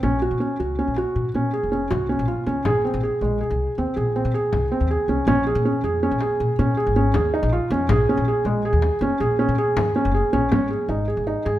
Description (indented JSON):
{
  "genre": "contemporary instrumental, chamber music in an uneven meter",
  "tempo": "160 BPM",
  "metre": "7/4",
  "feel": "straight",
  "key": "Bb minor",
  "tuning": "A4 = 439 Hz",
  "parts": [
    { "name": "felt-muted upright piano", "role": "arpeggios", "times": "0.0-11.6 s", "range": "Ab3 to Ab4", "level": "-21 LUFS", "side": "right 1 dB", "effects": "none" },
    { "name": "upright bass", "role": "bass", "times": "0.0-11.6 s", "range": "F1 to Bb2", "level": "-24 LUFS", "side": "left 1 dB", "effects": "none" },
    { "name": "frame drum", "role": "percussion", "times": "0.0-11.6 s", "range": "none", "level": "-28 LUFS", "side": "left 3 dB", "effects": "none" }
  ],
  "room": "moderate recital hall reverb, RT60 1.5 s",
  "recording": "none",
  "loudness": "-19 LUFS",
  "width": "side -14 dB against mid",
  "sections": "0.0-10.5 A section; 10.5-11.6 B section",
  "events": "none",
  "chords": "0.0 Gbmaj7/Bb; 2.7 Bb7sus2; 5.3 Bbm7; 7.9 Absus4",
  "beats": "| 0.03 0.41 0.78 1.16 1.53 1.91 2.28 | 2.66 3.03 3.40 3.78 4.15 4.53 4.90 | 5.28 5.65 6.02 6.40 6.77 7.15 7.52 | 7.89 8.27 8.64 9.02 9.39 9.77 10.14 | 10.52 10.89 11.27"
}